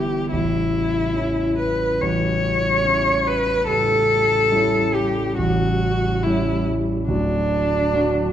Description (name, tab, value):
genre	classical, romantic duo for cello and grand piano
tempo	71 BPM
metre	4/4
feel	rubato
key	A major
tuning	A4 = 440 Hz
part	dark cello	melody	0.0-8.3 s	D4 to C#5	-20 LUFS	left 1 dB	none
part	dark concert grand piano	accompaniment	0.0-8.3 s	A0 to F#4	-22 LUFS	equal	none
room	wet recital hall reverb, RT60 1.6 s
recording	dark, warm production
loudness	-18 LUFS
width	side -10 dB against mid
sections	0.0-8.3 A section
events	none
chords	0.3 A; 3.7 A7; 7.1 D